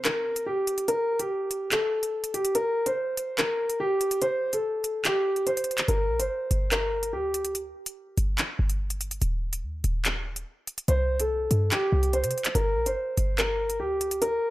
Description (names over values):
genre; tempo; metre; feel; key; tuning
hip hop, drill; 144 BPM; 4/4; half-time; G minor; A4 = 437 Hz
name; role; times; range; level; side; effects
dark concert grand piano; melody; 0.0-7.5, 10.9-14.5 s; G4 to C5; -26 LUFS; equal; low-pass filter
drill drum kit; drums; 0.0-14.3 s; handclaps, hi-hat; -29 LUFS; equal; none
short 808-style bass; bass; 5.9-14.4 s; Eb1 to C3; -27 LUFS; equal; none
room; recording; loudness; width
little or no reverb; dry, gritty hardware recording; -24 LUFS; side -16 dB against mid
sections
0.0-14.5 A section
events
break 0.0-5.9, 7.5-10.9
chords
0.0 N.C.; 5.9 Gm; 9.2 N.C.; 10.9 C5; 12.5 Gm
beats
0.05 0.47 | 0.88 1.30 1.72 2.13 | 2.55 2.97 3.38 3.80 | 4.22 4.63 5.05 5.47 | 5.88 6.30 6.72 7.13 | 7.55 7.97 8.38 8.80 | 9.22 9.63 10.05 10.47 | 10.88 11.30 11.72 12.13 | 12.55 12.97 13.38 13.80 | 14.22